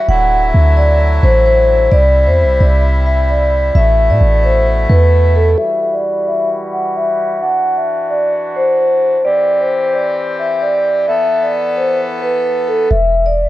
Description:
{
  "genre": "hip hop, trap",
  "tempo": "131 BPM",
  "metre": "4/4",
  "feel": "half-time",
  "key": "unclear",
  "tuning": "A4 = 442 Hz",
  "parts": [
    { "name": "vibraphone with medium mallets", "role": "melody", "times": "0.0-13.5 s", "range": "A4 to F#5", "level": "-13 LUFS", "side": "equal", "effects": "low-pass filter" },
    { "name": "accordion", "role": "sustained chords", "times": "0.0-12.9 s", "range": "B2 to A4", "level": "-21 LUFS", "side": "left 1 dB", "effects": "low-pass filter" },
    { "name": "clean 808-style bass", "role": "bass", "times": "0.1-5.6, 12.9-13.5 s", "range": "D1 to A2", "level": "-12 LUFS", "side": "equal", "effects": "none" }
  ],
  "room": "light reverb, studio reverb",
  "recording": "none",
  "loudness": "-11 LUFS",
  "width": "side -16 dB against mid",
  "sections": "0.0-5.6 A section; 5.6-12.9 B section",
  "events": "filter sweep 5.6-12.9",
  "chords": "0.1 Dadd9; 1.9 C; 3.8 Asus2; 5.6 Emadd9; 7.4 Dadd9; 9.2 C; 11.1 Asus2; 12.9 N.C."
}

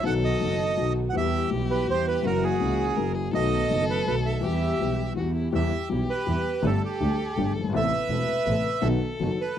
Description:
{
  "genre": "tango",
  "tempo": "164 BPM",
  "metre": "3/4",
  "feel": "rubato",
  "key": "E minor",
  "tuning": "A4 = 440 Hz",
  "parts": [
    { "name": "bandoneon", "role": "melody", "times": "0.0-9.6 s", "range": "G4 to F#5", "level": "-28 LUFS", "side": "right 5 dB", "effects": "none" },
    { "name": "dark violin", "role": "second line", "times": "0.0-9.6 s", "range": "E4 to B4", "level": "-32 LUFS", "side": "left 4 dB", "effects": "none" },
    { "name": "warm baby grand piano", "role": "accompaniment", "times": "0.0-9.6 s", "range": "E1 to G4", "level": "-28 LUFS", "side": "left 7 dB", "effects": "none" },
    { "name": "dark studio string section", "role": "stabs", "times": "0.0-9.4 s", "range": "A3 to A4", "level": "-35 LUFS", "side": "right 4 dB", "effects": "none" },
    { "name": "clear double bass", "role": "bass", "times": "0.0-9.4 s", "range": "E1 to E2", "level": "-29 LUFS", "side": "right 3 dB", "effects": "none" }
  ],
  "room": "small room ambience",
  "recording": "dry, close 1970s-style studio recording",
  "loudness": "-23 LUFS",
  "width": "side -10 dB against mid",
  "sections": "0.0-5.5 A section; 5.5-9.6 B section",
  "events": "none",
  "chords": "0.0 B; 1.1 Em; 2.2 F#7; 3.3 B7; 4.4 Em; 6.6 Gsus2; 7.7 Amadd9; 8.8 B"
}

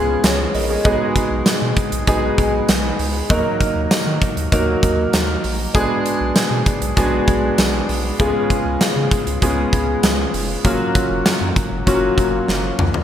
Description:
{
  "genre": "1980s-style pop",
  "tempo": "98 BPM",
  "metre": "4/4",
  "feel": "straight",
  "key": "F# major",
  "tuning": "A4 = 439 Hz",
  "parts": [
    { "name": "warm concert grand piano", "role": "accompaniment", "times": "0.0-13.0 s", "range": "F#3 to D#5", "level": "-19 LUFS", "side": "equal", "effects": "analog chorus" },
    { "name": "round analog bass", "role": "bass", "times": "0.0-13.0 s", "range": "E#1 to D#3", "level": "-24 LUFS", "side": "equal", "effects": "none" },
    { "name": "huge arena drum kit", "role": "drums", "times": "0.2-13.0 s", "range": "hi-hat, kick drum, snare drum, tambourine, toms", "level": "-19 LUFS", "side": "equal", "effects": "gated reverb" }
  ],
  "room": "moderate lush hall reverb, RT60 1.8 s",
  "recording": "bright 1980s-style digital production",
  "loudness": "-15 LUFS",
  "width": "side -10 dB against mid",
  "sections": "0.0-13.0 A section",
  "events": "drum fill 12.5-13.0",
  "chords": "0.0 C#7; 0.8 G#m7/B; 3.3 D#m; 5.7 Bm6; 8.2 C#7; 10.6 F#maj7"
}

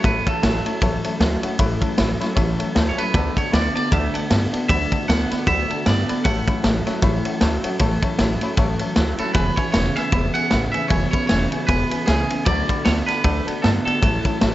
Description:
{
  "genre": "rockabilly",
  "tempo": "154 BPM",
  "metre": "4/4",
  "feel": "swing 58% on 8ths",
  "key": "A major",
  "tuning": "A4 = 443 Hz",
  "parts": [
    { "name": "twangy electric guitar", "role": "melody", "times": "0.0-14.5 s", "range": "G#4 to F#5", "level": "-25 LUFS", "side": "right 2 dB", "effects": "spring reverb, digital delay" },
    { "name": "picked steel-string acoustic guitar", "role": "accompaniment", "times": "0.0-14.5 s", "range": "A2 to A4", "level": "-30 LUFS", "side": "left 3 dB", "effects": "none" },
    { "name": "warm upright piano", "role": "accompaniment", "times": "0.0-14.5 s", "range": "B4 to B5", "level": "-30 LUFS", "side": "left 5 dB", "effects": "none" },
    { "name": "electric guitar through a small old amp", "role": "riff", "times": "0.0-14.5 s", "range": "E2 to B3", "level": "-26 LUFS", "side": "right 2 dB", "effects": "analog chorus" },
    { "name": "upright bass", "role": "bass", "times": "0.0-14.5 s", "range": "E1 to G2", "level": "-23 LUFS", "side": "equal", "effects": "none" },
    { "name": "vintage drum kit", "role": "drums", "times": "0.0-14.5 s", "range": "kick drum, ride cymbal, snare drum", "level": "-21 LUFS", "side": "equal", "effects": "none" }
  ],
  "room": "little or no reverb",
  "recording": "nothing above 7.9 kHz",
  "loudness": "-18 LUFS",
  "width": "side -15 dB against mid",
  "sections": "0.0-14.5 A section",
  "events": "none",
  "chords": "0.0 A6; 3.1 D6; 6.2 A6; 9.4 E6; 12.5 D6; 14.0 A6"
}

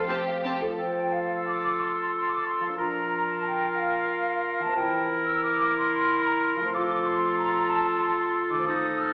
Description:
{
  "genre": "classical",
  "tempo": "183 BPM",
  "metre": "3/4",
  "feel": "uneven beats, rubato",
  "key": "F major",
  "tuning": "A4 = 440 Hz",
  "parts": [
    { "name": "warm oboe", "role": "second line", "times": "0.0-9.1 s", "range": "F4 to Bb4", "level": "-30 LUFS", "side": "equal", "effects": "none" },
    { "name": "warm symphonic violin section", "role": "second line", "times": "0.0-0.8 s", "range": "G4 to A4", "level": "-35 LUFS", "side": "equal", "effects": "none" },
    { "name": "concert harp", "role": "arpeggios", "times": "0.0-9.1 s", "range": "Eb3 to F5", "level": "-37 LUFS", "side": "equal", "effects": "none" },
    { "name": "rich symphonic violin section", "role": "melody", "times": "0.1-0.5 s", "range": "A5", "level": "-44 LUFS", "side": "equal", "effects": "none" },
    { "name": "rich studio viola section", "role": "accompaniment", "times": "0.1-0.5 s", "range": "C4", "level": "-39 LUFS", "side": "equal", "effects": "none" },
    { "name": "bright clarinet", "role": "second line", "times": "0.8-9.1 s", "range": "Eb4 to F4", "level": "-32 LUFS", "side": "equal", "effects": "none" },
    { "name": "large flute ensemble", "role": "second line", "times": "0.8-9.1 s", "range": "F5 to F6", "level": "-31 LUFS", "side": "equal", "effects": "none" }
  ],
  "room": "wet recital hall reverb, RT60 1.6 s",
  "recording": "recorded in a church or concert hall, AM radio sound",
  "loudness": "-26 LUFS",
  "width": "mono",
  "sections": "0.8-9.1 A section",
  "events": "none",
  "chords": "0.0 F; 2.8 Bb/F; 4.8 C7/E; 6.7 F"
}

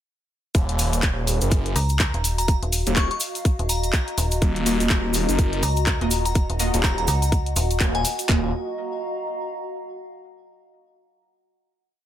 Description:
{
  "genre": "bass house",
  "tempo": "124 BPM",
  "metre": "4/4",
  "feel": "swing 59% on 16ths",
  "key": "Eb minor",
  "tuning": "A4 = 440 Hz",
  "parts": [
    { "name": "phased detuned saw bass", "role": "bass", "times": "0.5-8.5 s", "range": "Eb1 to Gb1", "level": "-23 LUFS", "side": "equal", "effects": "phaser, overdrive, sidechain pumping" },
    { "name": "garage drum kit", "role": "drums", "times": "0.5-8.4 s", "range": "handclaps, kick drum", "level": "-20 LUFS", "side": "equal", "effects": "overdrive" },
    { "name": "house drum kit", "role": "drums", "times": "0.5-8.3 s", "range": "handclaps, hi-hat", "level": "-27 LUFS", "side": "left 1 dB", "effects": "none" },
    { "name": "cabasa", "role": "percussion", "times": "0.5-8.3 s", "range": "none", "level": "-29 LUFS", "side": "right 2 dB", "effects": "none" },
    { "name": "warbly tape-like pad", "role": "texture", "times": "1.9-10.2 s", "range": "Gb4 to Bb5", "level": "-31 LUFS", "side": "left 1 dB", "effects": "chorus, built-in reverb, sidechain pumping" },
    { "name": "glassy synth bell", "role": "melody", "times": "1.8-8.3 s", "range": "Ab5 to Db6", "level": "-30 LUFS", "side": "left 2 dB", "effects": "chorus, phaser, ping-pong delay" },
    { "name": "metallic FM bass", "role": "bass", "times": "1.8-7.8 s", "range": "Eb1 to Db2", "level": "-23 LUFS", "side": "equal", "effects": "tube saturation, sidechain pumping" },
    { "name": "orchestra-hit-like synth stab", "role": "stabs", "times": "4.7-8.5 s", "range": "Bb3 to Eb5", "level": "-30 LUFS", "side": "right 1 dB", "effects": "built-in reverb, sidechain pumping, ping-pong delay" }
  ],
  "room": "light reverb",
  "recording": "none",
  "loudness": "-20 LUFS",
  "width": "side -11 dB against mid",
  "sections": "0.5-8.3 drop; 8.3-10.2 final chord",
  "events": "drop 0.5-8.3",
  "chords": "0.5 Ebmadd9"
}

